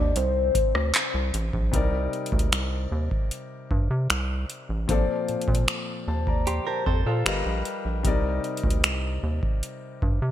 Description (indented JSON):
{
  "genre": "contemporary R&B",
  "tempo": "76 BPM",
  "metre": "4/4",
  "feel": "straight",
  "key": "C dorian",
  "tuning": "A4 = 440 Hz",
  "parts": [
    { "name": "soft octave-layered synth lead", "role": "melody", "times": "0.0-1.3 s", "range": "C5 to D5", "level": "-28 LUFS", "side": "left 4 dB", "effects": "chorus, phaser, ping-pong delay" },
    { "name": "clear grand piano", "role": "accompaniment", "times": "0.0-10.3 s", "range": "Bb2 to C6", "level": "-30 LUFS", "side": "left 4 dB", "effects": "none" },
    { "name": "rubbery square bass", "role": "bass", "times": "0.0-10.3 s", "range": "G1 to C3", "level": "-26 LUFS", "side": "right 1 dB", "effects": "none" },
    { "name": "soft round pluck", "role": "texture", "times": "0.0-0.8 s", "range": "A5", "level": "-57 LUFS", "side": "left 3 dB", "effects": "none" },
    { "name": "booming analog drum machine", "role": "drums", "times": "0.2-10.2 s", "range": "finger snaps, handclaps, hi-hat, kick drum, rim click", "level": "-25 LUFS", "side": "equal", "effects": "gated reverb" },
    { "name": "direct-recorded clean electric guitar", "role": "arpeggios", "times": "6.5-7.4 s", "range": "F4 to C5", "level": "-33 LUFS", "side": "right 7 dB", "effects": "ping-pong delay" }
  ],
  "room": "light reverb",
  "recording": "bright 1980s-style digital production",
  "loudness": "-23 LUFS",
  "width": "side -12 dB against mid",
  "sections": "0.0-1.7 A section; 1.7-10.3 B section",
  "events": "none",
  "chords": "0.0 Cm69; 4.9 Bbmaj9; 7.3 G7alt; 8.0 Cm7"
}